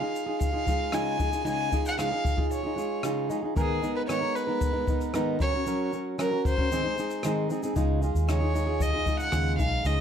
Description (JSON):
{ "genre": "acoustic pop", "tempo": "114 BPM", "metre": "4/4", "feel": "straight", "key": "Db mixolydian", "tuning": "A4 = 440 Hz", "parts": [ { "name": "warm violin", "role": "melody", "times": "0.0-10.0 s", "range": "Ab4 to Ab5", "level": "-30 LUFS", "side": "equal", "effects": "slapback echo" }, { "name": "fingerpicked plugged-in steel-string acoustic guitar", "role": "accompaniment", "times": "0.0-10.0 s", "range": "Ab2 to Bb4", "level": "-29 LUFS", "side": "right 1 dB", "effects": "none" }, { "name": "jazz brush drum kit", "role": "drums", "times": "0.2-10.0 s", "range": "kick drum, rim click, shaker", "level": "-30 LUFS", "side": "left 1 dB", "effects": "none" }, { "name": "vintage muted fingered electric bass", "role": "bass", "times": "7.8-10.0 s", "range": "Cb2 to Eb2", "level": "-27 LUFS", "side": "equal", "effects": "none" } ], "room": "light reverb", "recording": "dark, warm production", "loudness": "-25 LUFS", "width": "side -8 dB against mid", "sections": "0.0-7.8 A section; 7.8-10.0 B section", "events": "none", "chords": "0.0 Dbadd9; 3.6 Abmadd9; 5.4 Gb; 6.7 Ab; 7.8 Dbadd9" }